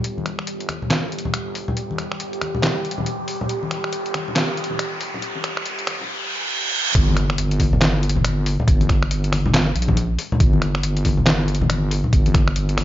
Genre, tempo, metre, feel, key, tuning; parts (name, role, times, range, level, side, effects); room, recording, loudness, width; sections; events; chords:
deep dubstep; 139 BPM; 4/4; swing 61% on 16ths, half-time; G minor; A4 = 439 Hz
deep dark ambient pad; sustained chords; 0.0-7.0 s; G3 to G4; -30 LUFS; right 1 dB; chorus, built-in reverb
wobble bass; bass; 0.0-12.8 s; G1 to Bb1; -23 LUFS; equal; chorus, tube saturation, high-pass filter
trip hop sampler-style drum kit; drums; 0.0-12.8 s; finger snaps, handclaps, hi-hat, snare drum; -23 LUFS; equal
swell, riser, reverse cymbal and impact; sound effects; 0.0-8.7 s; -27 LUFS; right 2 dB
congas; percussion; 0.2-12.8 s; -26 LUFS; left 2 dB
electronic kick drum; drums; 7.0-12.4 s; -18 LUFS; equal
light reverb, digital ambience; high-pass filter, nothing above 7.5 kHz; -18 LUFS; side -13 dB against mid
0.0-7.0 A section; 7.0-12.8 B section
build-up 0.0-7.0; riser 0.0-7.0; filter sweep 0.0-7.0; reverse cymbal 6.1-7.0; drop 7.0-12.8; impact 7.0-8.7